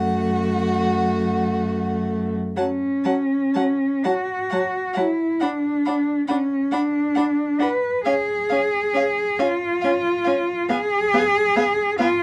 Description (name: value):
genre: classical, slow romantic movement for string quartet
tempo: 40-47 BPM (dotted quarters)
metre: 6/8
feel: rubato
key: F# minor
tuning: A4 = 440 Hz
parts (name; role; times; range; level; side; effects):
- rich violin; melody; 0.0-12.1 s; F#5 to B5; -34 LUFS; equal; none
- clear violin; second line; 0.0-12.1 s; F#4 to F#5; -29 LUFS; equal; none
- warm viola; accompaniment; 0.0-12.1 s; F#3 to D4; -26 LUFS; equal; none
- clear cello; bass; 0.0-12.2 s; F#2 to B4; -23 LUFS; equal; none
room: light reverb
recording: dark, warm production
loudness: -21 LUFS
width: mono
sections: 0.0-2.6 A section; 2.6-12.2 A section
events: none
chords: 0.0 F#m; 2.6 F#5; 5.4 Bm; 8.1 C#; 10.7 Fdim/Cb